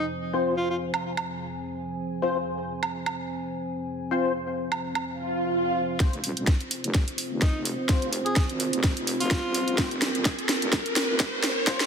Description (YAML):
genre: bass house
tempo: 127 BPM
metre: 4/4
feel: swing 56% on 16ths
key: F minor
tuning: A4 = 440 Hz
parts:
  - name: breathy alto saxophone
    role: melody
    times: 0.0-0.8, 7.4-9.9 s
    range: Eb4 to Ab4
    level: -31 LUFS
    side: equal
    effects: digital delay
  - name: dark analog pad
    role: sustained chords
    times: 0.0-11.9 s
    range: F3 to Ab5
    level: -32 LUFS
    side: right 1 dB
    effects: lush chorus, sidechain pumping
  - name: percussive organ stab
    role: stabs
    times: 0.3-11.9 s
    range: C4 to C5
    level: -29 LUFS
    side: left 4 dB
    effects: ensemble chorus, sidechain pumping, digital delay
  - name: garage drum kit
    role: drums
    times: 0.9-11.9 s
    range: hi-hat, snare drum, woodblock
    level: -28 LUFS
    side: right 1 dB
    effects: overdrive
  - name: swell and riser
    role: sound effects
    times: 5.2-11.9 s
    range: none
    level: -31 LUFS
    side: right 1 dB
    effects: none
  - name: wobble bass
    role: bass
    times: 6.0-11.9 s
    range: Eb1 to Ab1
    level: -34 LUFS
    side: equal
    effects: chorus, sidechain pumping, high-pass filter
  - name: electronic kick drum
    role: drums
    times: 6.0-11.8 s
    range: none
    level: -24 LUFS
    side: equal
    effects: overdrive
room: moderate lush hall reverb, RT60 1.7 s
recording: dense, heavily limited modern master, high-pass filter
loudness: -24 LUFS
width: side -7 dB against mid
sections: 0.0-6.0 A section; 6.0-11.9 B section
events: filter sweep on synth stab 0.0-6.0, 6.0-11.9; swell 5.2-6.0; build-up 6.0-11.9; drum fill 6.0-11.9; riser 6.0-11.9; filter sweep 6.0-11.9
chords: 0.0 F5